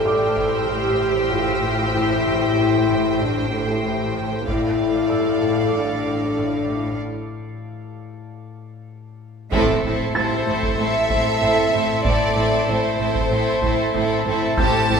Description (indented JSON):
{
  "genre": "cinematic, suspense film score",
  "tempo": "95 BPM",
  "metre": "4/4",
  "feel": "straight",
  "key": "A minor",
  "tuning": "A4 = 439 Hz",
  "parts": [
    { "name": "warm studio violin section", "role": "melody", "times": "0.0-15.0 s", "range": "C5 to A5", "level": "-26 LUFS", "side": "equal", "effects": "none" },
    { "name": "rich studio violin section", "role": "second line", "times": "0.0-15.0 s", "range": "E4 to D5", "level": "-27 LUFS", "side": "right 1 dB", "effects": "none" },
    { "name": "warm studio viola section", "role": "accompaniment", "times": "0.0-15.0 s", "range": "A3 to A4", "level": "-27 LUFS", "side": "right 3 dB", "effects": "none" },
    { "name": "drifting glass-harmonics texture", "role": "sustained chords", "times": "0.0-15.0 s", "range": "G4 to G5", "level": "-28 LUFS", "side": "equal", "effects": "chorus, built-in reverb" },
    { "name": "mellow French horn section", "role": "sustained chords", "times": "0.0-7.0 s", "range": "A3 to A4", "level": "-22 LUFS", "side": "left 3 dB", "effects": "none" },
    { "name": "concert harp", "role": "riff", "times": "0.0-15.0 s", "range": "A2 to A3", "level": "-28 LUFS", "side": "left 5 dB", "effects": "none" },
    { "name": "rich studio cello section", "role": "bass", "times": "0.0-15.0 s", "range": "A2", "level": "-29 LUFS", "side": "right 3 dB", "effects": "none" },
    { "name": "warm studio double bass section", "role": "bass", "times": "0.0-15.0 s", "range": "A1", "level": "-30 LUFS", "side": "right 2 dB", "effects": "none" },
    { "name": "dark studio violin section", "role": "texture", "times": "0.0-4.1, 9.5-15.0 s", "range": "E6 to C#7", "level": "-32 LUFS", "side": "equal", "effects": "none" },
    { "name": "felt-muted upright piano", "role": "texture", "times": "0.0-15.0 s", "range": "Bb4 to A6", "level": "-31 LUFS", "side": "right 2 dB", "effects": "none" },
    { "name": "solo taiko drums", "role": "drums", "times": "0.4-0.7, 4.5-5.7, 9.5-15.0 s", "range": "none", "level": "-28 LUFS", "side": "right 2 dB", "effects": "none" },
    { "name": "impact", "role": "sound effects", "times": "9.5-12.1 s", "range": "none", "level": "-35 LUFS", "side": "right 2 dB", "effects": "none" }
  ],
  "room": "wet recital hall reverb, RT60 1.4 s",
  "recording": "recorded in a church or concert hall",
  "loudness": "-18 LUFS",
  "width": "side -6 dB against mid",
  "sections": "0.0-9.5 A section; 9.5-15.0 B section",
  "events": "break 7.0-9.5; band accent 9.5-10.2; impact 9.5-12.1",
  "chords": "0.0 Am7; 4.5 Dmadd9/A; 9.5 Am"
}